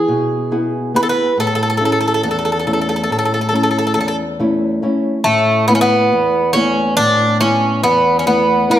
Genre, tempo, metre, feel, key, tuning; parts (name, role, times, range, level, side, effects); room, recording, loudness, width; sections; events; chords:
greek folk, Greek bouzouki band; 139 BPM (eighths); 9/8; straight; A major; A4 = 438 Hz
Greek bouzouki; melody; 0.0-8.8 s; A3 to B4; -14 LUFS; right 1 dB
nylon-string guitar; accompaniment; 0.0-8.8 s; E2 to G#4; -17 LUFS; left 1 dB
wet recital hall reverb, RT60 1.6 s; -13 LUFS; side -11 dB against mid
0.0-5.3 A section; 5.3-8.8 B section
0.0 E; 1.4 A; 5.3 Asus2